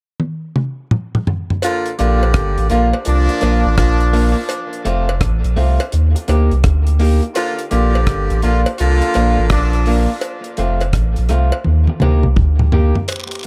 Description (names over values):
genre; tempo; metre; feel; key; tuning
roots reggae; 84 BPM; 4/4; swing 65% on 16ths; Bb major; A4 = 441 Hz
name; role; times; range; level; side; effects
deep reggae drum kit; drums; 0.2-13.5 s; hi-hat, kick drum, rim click, toms; -21 LUFS; equal; none
clear horn section; second line; 1.6-10.1 s; Bb2 to G4; -23 LUFS; equal; tape echo
cowbell and jawbone-type rattle; percussion; 1.6-13.3 s; none; -29 LUFS; equal; none
electric guitar at the edge of break-up; accompaniment; 2.0-13.0 s; A3 to G4; -24 LUFS; equal; tape echo
warm sub bass; bass; 2.0-12.9 s; F1 to Eb2; -17 LUFS; equal; none
room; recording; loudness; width
light reverb, studio reverb; echo-heavy mix; -16 LUFS; mono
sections
0.0-1.6 A section; 1.6-13.1 B section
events
drum fill 0.2-1.6, 11.7-13.1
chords
0.0 N.C.; 1.6 Bb; 4.5 F; 5.9 Eb; 7.4 Bb; 10.2 F; 11.7 Eb